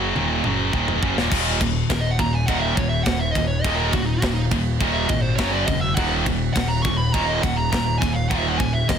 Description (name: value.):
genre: heavy metal.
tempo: 103 BPM.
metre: 4/4.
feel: straight.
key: Eb phrygian.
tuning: A4 = 441 Hz.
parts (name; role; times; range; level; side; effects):
scooped high-gain guitar; riff; 0.0-9.0 s; Eb2 to Gb3; -25 LUFS; left 9 dB; distortion.
tight distorted guitar; riff; 0.0-9.0 s; Eb2 to Gb3; -24 LUFS; right 10 dB; distortion.
growling picked electric bass; bass; 0.0-9.0 s; Eb1 to Ab1; -27 LUFS; equal; overdrive.
tight metal drum kit; drums; 0.2-9.0 s; crash cymbal, kick drum, ride cymbal, snare drum, toms; -25 LUFS; equal; soft clipping on kick.
dark smooth lead guitar; melody; 1.9-9.0 s; Eb4 to Db6; -26 LUFS; equal; overdrive.
room: light reverb.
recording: dense, heavily limited modern master.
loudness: -18 LUFS.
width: side -8 dB against mid.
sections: 0.0-1.3 A section; 1.3-9.0 B section.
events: drum fill 0.2-1.3; lead electric guitar solo 1.3-9.0.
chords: 0.0 Ebm; 1.3 Eb5; 5.4 Gb5; 6.0 Eb5.